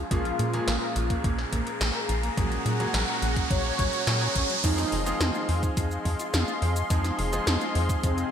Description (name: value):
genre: synthwave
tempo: 106 BPM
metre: 4/4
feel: straight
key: unclear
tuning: A4 = 440 Hz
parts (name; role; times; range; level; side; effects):
- brassy analog pad; sustained chords; 0.0-8.3 s; Ab4 to C6; -33 LUFS; left 2 dB; chorus, sidechain pumping
- bright grand piano; stabs; 0.0-8.3 s; Bb2 to Ab4; -33 LUFS; right 2 dB; low-pass filter, ping-pong delay
- tight sequencer bass; bass; 0.0-8.2 s; F1 to Bb2; -28 LUFS; equal; sidechain pumping
- riser; sound effects; 0.0-4.6 s; none; -33 LUFS; right 2 dB; none
- mellow synth brass; melody; 0.1-8.3 s; C4 to Db5; -31 LUFS; equal; chorus, digital delay
- mellow electric guitar; riff; 0.1-8.1 s; F3 to Bb4; -38 LUFS; right 3 dB; ensemble chorus, ping-pong delay
- 80s electronic pad drums; drums; 0.1-8.3 s; cabasa, crash cymbal, hi-hat, snare drum; -31 LUFS; equal; high-pass filter on hats, high-pass filter on snare, high-pass filter on cymbals, high-pass filter on perc
- electronic kick drum; drums; 0.1-8.1 s; none; -28 LUFS; equal; none
room: moderate lush hall reverb, RT60 1.6 s, digital ambience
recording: bright 1980s-style digital production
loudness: -24 LUFS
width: side -8 dB against mid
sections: 0.0-4.6 A section; 4.6-8.3 B section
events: riser 0.0-4.6; filter sweep on analog synth pad 0.0-4.6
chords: 0.1 Bbm7; 2.4 Gbadd9/Bb; 4.6 Fm7